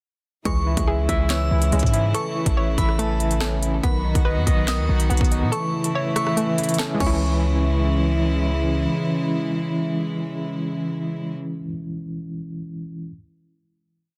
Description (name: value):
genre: hip hop, drill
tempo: 142 BPM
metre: 4/4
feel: half-time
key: C# minor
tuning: A4 = 440 Hz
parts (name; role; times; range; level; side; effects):
- glassy synth bell; second line; 0.5-8.4 s; A5 to E6; -34 LUFS; equal; chorus, digital delay
- overdriven tine electric piano; accompaniment; 0.5-13.1 s; D#3 to E5; -28 LUFS; equal; medium tremolo, low-pass filter
- rich chamber string section; sustained chords; 0.5-11.4 s; C#3 to F#4; -31 LUFS; equal; none
- hollow square pluck; arpeggios; 0.5-11.7 s; G#3 to D#5; -32 LUFS; equal; chorus, low-pass filter, digital delay
- hard-hitting 808-style bass; bass; 0.5-8.9 s; A1 to B2; -24 LUFS; equal; none
- drill drum kit; drums; 0.5-7.1 s; crash cymbal, handclaps, hi-hat, kick drum, rim click, snare drum; -27 LUFS; equal; overdrive
room: digital ambience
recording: dense, heavily limited modern master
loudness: -22 LUFS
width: mono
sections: 0.5-7.2 hook; 7.2-10.6 final hit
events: kick muted 5.5-7.2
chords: 0.5 C#m; 2.1 A; 3.8 B; 5.5 A; 7.0 C#m